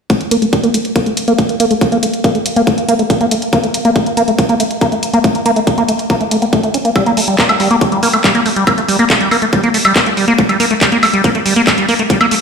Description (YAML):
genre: psychedelic trance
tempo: 140 BPM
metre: 4/4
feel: straight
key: unclear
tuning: A4 = 440 Hz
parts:
  - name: liquid acid bass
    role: riff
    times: 0.1-12.3 s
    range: G3 to C#4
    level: -13 LUFS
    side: equal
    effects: chorus, auto-pan, cassette tape, sidechain pumping, digital delay
  - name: electronic kick drum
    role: drums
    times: 0.1-12.2 s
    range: none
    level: -14 LUFS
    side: equal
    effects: high-pass filter on kick, high-pass filter on room
  - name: garage drum kit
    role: drums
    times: 0.1-12.4 s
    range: handclaps, hi-hat, woodblock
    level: -17 LUFS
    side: equal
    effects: none
room: moderate digital room reverb, RT60 1.3 s, digital ambience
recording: played on a big sound system in a bare room, stone room reverb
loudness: -10 LUFS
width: side -6 dB against mid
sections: 0.1-12.4 A section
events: filter sweep on acid bass 0.1-12.4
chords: none